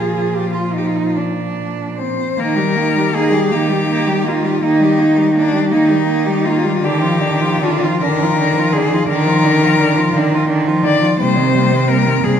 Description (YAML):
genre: classical, lyrical piece for cello ensemble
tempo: 48-60 BPM (dotted quarters)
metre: 12/8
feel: rubato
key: Eb major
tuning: A4 = 440 Hz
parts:
  - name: clear cello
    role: melody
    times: 0.0-12.4 s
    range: D4 to D5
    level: -18 LUFS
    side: left 5 dB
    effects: none
  - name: dark cello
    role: second line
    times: 0.0-12.4 s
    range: Bb3 to Ab4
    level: -19 LUFS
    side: right 5 dB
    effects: none
  - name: warm cello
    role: accompaniment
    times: 0.0-12.4 s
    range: D3 to Bb3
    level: -21 LUFS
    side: left 3 dB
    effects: none
  - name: rich cello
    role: bass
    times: 0.0-12.4 s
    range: Bb2 to Eb3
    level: -18 LUFS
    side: right 1 dB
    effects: none
room: wet recital hall reverb, RT60 1.7 s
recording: none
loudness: -13 LUFS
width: side -8 dB against mid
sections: 0.0-2.4 A section; 2.4-12.4 B section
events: none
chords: 0.0 Bb; 2.4 Eb; 6.8 Bb/D; 11.2 Cm7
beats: 1.16 | 2.38 3.52 4.62 5.72 | 6.83 8.02 9.09 10.14 | 11.20 12.24